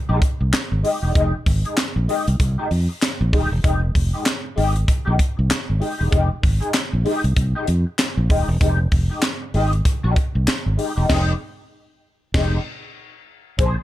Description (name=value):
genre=funk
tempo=96 BPM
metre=4/4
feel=swing 60% on 16ths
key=F minor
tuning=A4 = 438 Hz
part: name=clean electric guitar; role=accompaniment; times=0.1-13.8 s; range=Ab3 to C5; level=-24 LUFS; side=left 2 dB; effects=wah, ensemble chorus, plate reverb
part: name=fingered electric bass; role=bass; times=0.1-13.7 s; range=Eb1 to F2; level=-19 LUFS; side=equal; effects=none
part: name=crisp fusion drum kit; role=drums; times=0.2-13.8 s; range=crash cymbal, handclaps, hi-hat, kick drum, snare drum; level=-21 LUFS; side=equal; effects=none
room=light reverb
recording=none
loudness=-18 LUFS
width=side -14 dB against mid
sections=0.0-13.6 A section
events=band accent 11.1-13.6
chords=0.0 Fm9